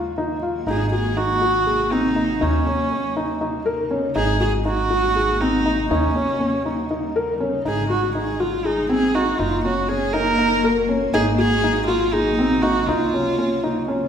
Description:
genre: contemporary instrumental, chamber music in an uneven meter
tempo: 241 BPM (eighths)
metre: 7/8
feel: straight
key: unclear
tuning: A4 = 439 Hz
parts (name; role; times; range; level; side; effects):
- granular cloud pad; sustained chords; 0.0-14.1 s; C3 to Gb4; -27 LUFS; left 1 dB; built-in reverb
- felt-muted upright piano; arpeggios; 0.0-14.1 s; C4 to Bb4; -22 LUFS; left 1 dB; none
- upright bass; bass; 0.0-14.1 s; Gb1 to Eb2; -27 LUFS; equal; none
- warm viola; melody; 0.7-14.1 s; Db4 to Bb4; -22 LUFS; right 2 dB; none
room: wet recital hall reverb, RT60 1.4 s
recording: recorded in a church or concert hall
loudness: -18 LUFS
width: side -8 dB against mid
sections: 0.7-14.1 A section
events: none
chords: 0.0 Ebm; 0.7 Ab9; 2.4 Eb7; 4.2 Ab9; 5.9 Eb7; 7.6 Ab9; 9.4 Gbmaj7; 11.1 Ab9; 12.9 Dbmaj7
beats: 0.18 0.42 | 0.68 0.92 1.17 1.42 1.67 1.92 2.17 | 2.42 2.67 2.92 3.17 3.42 3.67 3.91 | 4.16 4.41 4.66 4.91 5.16 5.41 5.66 | 5.91 6.16 6.40 6.65 6.90 7.15 7.40 | 7.65 7.90 8.15 8.40 8.64 8.89 9.14 | 9.39 9.64 9.89 10.14 10.39 10.64 10.88 | 11.13 11.38 11.63 11.88 12.13 12.38 12.63 | 12.88 13.13 13.38 13.62 13.87

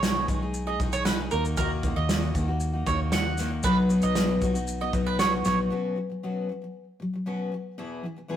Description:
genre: acoustic pop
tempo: 116 BPM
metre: 4/4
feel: straight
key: B major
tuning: A4 = 440 Hz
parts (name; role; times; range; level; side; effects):
- picked steel-string acoustic guitar; accompaniment; 0.0-8.4 s; E2 to G#4; -28 LUFS; left 2 dB; none
- mandolin; arpeggios; 0.0-5.6 s; A#4 to F#5; -28 LUFS; right 6 dB; none
- vintage muted fingered electric bass; bass; 0.0-5.7 s; A#1 to D#2; -30 LUFS; equal; none
- natural country drum kit; drums; 0.0-5.6 s; kick drum, shaker, snare drum; -29 LUFS; right 1 dB; none
room: wet stone room reverb, RT60 1.0 s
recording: rough rehearsal-room recording, warm saturation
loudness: -24 LUFS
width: side -10 dB against mid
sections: 0.0-5.7 A section; 5.7-8.4 B section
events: none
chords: 0.0 G#m/B; 1.3 D#m; 3.6 B; 5.7 Bsus2; 7.8 E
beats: 0.02 0.54 1.06 | 1.57 2.09 2.61 3.13 | 3.65 4.16 4.68 5.20 | 5.72 6.24 6.75 7.27 | 7.79 8.31

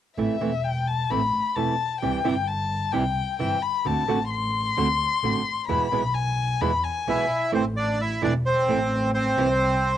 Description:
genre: tango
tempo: 131 BPM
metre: 4/4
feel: rubato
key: A minor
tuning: A4 = 440 Hz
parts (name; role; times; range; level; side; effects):
- warm violin; second line; 0.2-7.3 s; E5 to C6; -25 LUFS; left 6 dB; cassette tape
- nylon-string guitar; accompaniment; 0.2-9.5 s; B2 to F#4; -26 LUFS; right 6 dB; cassette tape
- dark double bass; bass; 0.2-10.0 s; E1 to E2; -28 LUFS; equal; none
- bandoneon; melody; 7.1-10.0 s; C4 to E5; -22 LUFS; right 1 dB; cassette tape
room: moderate booth ambience, RT60 0.2 s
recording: home recording on cassette, lossy compression artefacts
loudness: -22 LUFS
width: side -11 dB against mid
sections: 0.2-7.5 A section; 7.5-10.0 B section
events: none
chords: 0.2 Am; 2.0 C; 3.9 D7; 5.7 E; 7.5 Am; 9.4 C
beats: | 0.18 0.65 1.11 1.57 | 2.03 2.49 2.95 3.40 | 3.86 4.32 4.78 5.24 | 5.70 6.16 6.62 7.08 | 7.54 8.00 8.46 8.92 | 9.38 9.84

